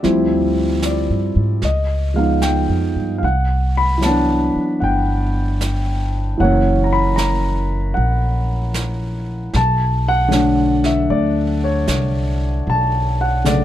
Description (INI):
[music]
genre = jazz ballad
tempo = 76 BPM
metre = 4/4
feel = swing 67% on 8ths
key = unclear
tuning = A4 = 440 Hz
[part]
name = warm concert grand piano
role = accompaniment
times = 0.0-13.6 s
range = C#3 to B5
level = -18 LUFS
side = equal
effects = none
[part]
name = upright bass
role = bass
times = 0.0-13.6 s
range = F#1 to G#2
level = -19 LUFS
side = equal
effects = none
[part]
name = jazz brush drum kit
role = drums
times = 0.0-13.6 s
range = brushed snare drum, hi-hat, snare drum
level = -29 LUFS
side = right 3 dB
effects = none
[sound]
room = little or no reverb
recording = dark, warm production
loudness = -15 LUFS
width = side -12 dB against mid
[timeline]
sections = 0.0-13.6 A section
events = none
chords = 0.0 Dm11; 1.6 C#9; 3.2 Cmaj9#11; 6.4 F#7; 9.5 Bm9